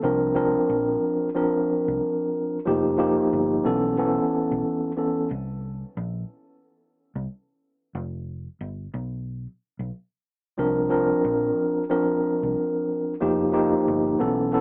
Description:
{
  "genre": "hip hop, boom-bap hip-hop",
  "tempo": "91 BPM",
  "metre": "4/4",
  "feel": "swing 60% on 16ths",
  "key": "C mixolydian",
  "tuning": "A4 = 441 Hz",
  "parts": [
    { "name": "mellow tine electric piano", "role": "accompaniment", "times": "0.0-5.3, 10.6-14.6 s", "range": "E3 to Bb4", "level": "-24 LUFS", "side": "equal", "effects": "cassette tape, high-pass filter, low-pass filter" },
    { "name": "vintage muted fingered electric bass", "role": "bass", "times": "0.0-14.6 s", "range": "F1 to C2", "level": "-35 LUFS", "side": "equal", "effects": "none" }
  ],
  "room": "moderate plate reverb, RT60 3.8 s",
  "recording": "small speaker sound",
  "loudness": "-24 LUFS",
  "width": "mono",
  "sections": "0.0-14.6 A section",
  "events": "break 5.3-10.6",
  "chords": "0.0 C9sus4; 2.7 F9sus4; 3.7 B9sus4; 5.3 Bbsus2; 7.9 Fsus2; 8.9 N.C.; 10.6 C9sus4; 13.2 F9sus4"
}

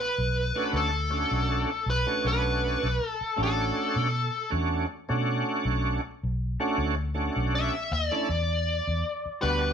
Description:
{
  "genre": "straight-eighth soul blues",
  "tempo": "79 BPM",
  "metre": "4/4",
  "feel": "swing 54% on 16ths",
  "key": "B minor",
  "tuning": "A4 = 439 Hz",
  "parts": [
    { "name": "smooth overdriven lead guitar", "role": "melody", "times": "0.0-9.7 s", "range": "A4 to E5", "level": "-28 LUFS", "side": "left 1 dB", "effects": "none" },
    { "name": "vintage muted fingered electric bass", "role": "bass", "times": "0.2-9.7 s", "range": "A1 to B2", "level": "-29 LUFS", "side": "equal", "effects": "none" },
    { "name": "bright tonewheel organ", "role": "accompaniment", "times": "0.6-9.7 s", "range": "G3 to F#4", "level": "-29 LUFS", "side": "right 2 dB", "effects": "slow rotary speaker, overdrive, chorus vibrato" }
  ],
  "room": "moderate studio reverb, RT60 0.7 s",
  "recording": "band playing live in one room",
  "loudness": "-25 LUFS",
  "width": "side -7 dB against mid",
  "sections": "0.0-9.7 A section",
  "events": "none",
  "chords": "0.0 Bm7; 8.3 Em7"
}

